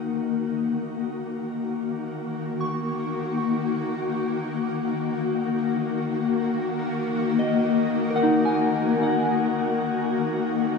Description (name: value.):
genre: ambient.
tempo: free time.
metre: none.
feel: none.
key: Eb minor.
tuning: A4 = 440 Hz.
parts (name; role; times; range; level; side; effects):
shimmering ambient pad; sustained chords; 0.0-10.8 s; Eb3 to Gb4; -24 LUFS; left 4 dB; chorus, built-in reverb.
soft synth bell; arpeggios; 0.0-10.8 s; Eb4 to Db6; -27 LUFS; equal; chorus, tape echo.
room: wet shimmer reverb, RT60 6.7 s.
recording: cassette tape, studio reverb.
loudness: -22 LUFS.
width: side -4 dB against mid.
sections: 0.0-10.8 A section.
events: fade-in on ambient pad 0.0-10.8; fade-in on synth bell 0.0-10.8.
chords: 0.0 Ebm7.